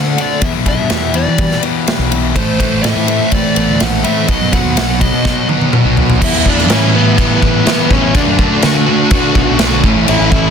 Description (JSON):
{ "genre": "quiet-loud alternative rock", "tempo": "124 BPM", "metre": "4/4", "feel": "straight", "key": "E dorian from 6.2 s", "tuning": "A4 = 436 Hz", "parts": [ { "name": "fuzz lead guitar", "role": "melody", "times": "0.0-10.5 s", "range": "B3 to F#5", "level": "-19 LUFS", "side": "left 3 dB", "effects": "distortion" }, { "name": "fingerpicked steel-string acoustic guitar", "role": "arpeggios", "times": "0.0-6.2 s", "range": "E2 to F#4", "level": "-25 LUFS", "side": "right 6 dB", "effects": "tape echo" }, { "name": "fuzz guitar", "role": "riff", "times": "0.0-10.5 s", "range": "E2 to G4", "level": "-17 LUFS", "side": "left 12 dB", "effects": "distortion" }, { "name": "fuzz fingered electric bass", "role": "bass", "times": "0.0-10.5 s", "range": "A1 to E3", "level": "-18 LUFS", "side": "equal", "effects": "overdrive" }, { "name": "big rock drum kit", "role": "drums", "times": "0.2-10.4 s", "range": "crash cymbal, kick drum, ride cymbal, snare drum, toms", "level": "-15 LUFS", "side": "equal", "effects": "none" }, { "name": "sludgy distorted guitar", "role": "riff", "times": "2.4-10.5 s", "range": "A2 to F#4", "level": "-16 LUFS", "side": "right 13 dB", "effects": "overdrive" }, { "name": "tonewheel organ", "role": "sustained chords", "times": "6.2-10.5 s", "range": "E4 to B5", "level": "-26 LUFS", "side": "equal", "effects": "none" } ], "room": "light reverb, studio reverb", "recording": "dense, heavily limited modern master", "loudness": "-10 LUFS", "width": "side -7 dB against mid", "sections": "0.0-6.2 A section; 6.2-10.5 B section", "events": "drum fill 5.3-6.2", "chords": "0.4 Em; 2.4 Amadd9; 4.3 B; 6.2 Em; 8.1 D6; 9.8 A" }